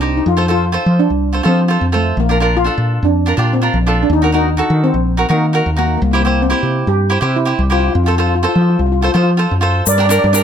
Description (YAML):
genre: calypso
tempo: 125 BPM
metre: 4/4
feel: straight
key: unclear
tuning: A4 = 439 Hz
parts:
  - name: steel pan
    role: melody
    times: 0.0-10.4 s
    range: A3 to D5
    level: -18 LUFS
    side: left 1 dB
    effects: tape echo
  - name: cavaquinho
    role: accompaniment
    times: 0.0-10.4 s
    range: D4 to C5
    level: -18 LUFS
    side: right 3 dB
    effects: none
  - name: woody fretless electric bass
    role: bass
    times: 0.0-10.4 s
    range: Bb1 to F3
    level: -15 LUFS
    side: equal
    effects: none
  - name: egg shaker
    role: percussion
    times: 9.9-10.4 s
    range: none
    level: -19 LUFS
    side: left 7 dB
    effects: none
room: light reverb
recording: faint mains hum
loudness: -12 LUFS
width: side -8 dB against mid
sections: 0.0-9.9 A section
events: none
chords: 0.3 F; 2.2 Bb; 4.1 Ebm; 6.0 C; 7.9 F; 9.9 Gm